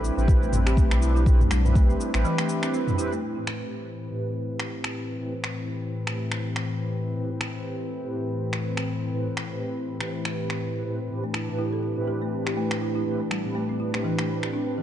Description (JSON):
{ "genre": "afro house", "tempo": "122 BPM", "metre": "4/4", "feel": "swing 57% on 16ths", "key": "A minor", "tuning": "A4 = 440 Hz", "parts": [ { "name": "warm analog pad", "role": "sustained chords", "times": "0.0-14.8 s", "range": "A2 to B4", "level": "-32 LUFS", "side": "left 2 dB", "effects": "chorus, sidechain pumping" }, { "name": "folk marimba with medium mallets", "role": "arpeggios", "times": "0.0-3.2, 11.2-14.8 s", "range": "E3 to A4", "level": "-30 LUFS", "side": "equal", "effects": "sidechain pumping, digital delay" }, { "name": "mellow synth brass", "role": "stabs", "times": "0.0-14.8 s", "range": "A2 to B4", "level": "-30 LUFS", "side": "right 2 dB", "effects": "chorus, sidechain pumping, digital delay" }, { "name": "warm sub bass", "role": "bass", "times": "0.0-2.2 s", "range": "A1 to B1", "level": "-23 LUFS", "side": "equal", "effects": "sidechain pumping" }, { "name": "deep house drum kit", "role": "drums", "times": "0.0-14.5 s", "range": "cabasa, finger snaps, toms", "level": "-32 LUFS", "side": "equal", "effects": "overdrive" }, { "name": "electronic kick drum", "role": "drums", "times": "0.3-1.9 s", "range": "none", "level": "-20 LUFS", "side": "equal", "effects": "overdrive" } ], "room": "light reverb, digital ambience", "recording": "dark, warm production, nothing above 10.5 kHz", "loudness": "-24 LUFS", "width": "side -11 dB against mid", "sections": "0.0-3.2 A section; 3.2-14.8 B section", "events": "break 2.2-3.2; filter sweep on analog polysynth 3.2-14.8", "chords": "0.0 Am9", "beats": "0.28 0.77 | 1.26 1.75 2.24 2.73 | 3.23 3.72 4.21 4.70 | 5.19 5.69 6.18 6.67 | 7.16 7.65 8.14 8.64 | 9.13 9.62 10.11 10.60 | 11.10 11.59 12.08 12.57 | 13.06 13.55 14.05 14.54" }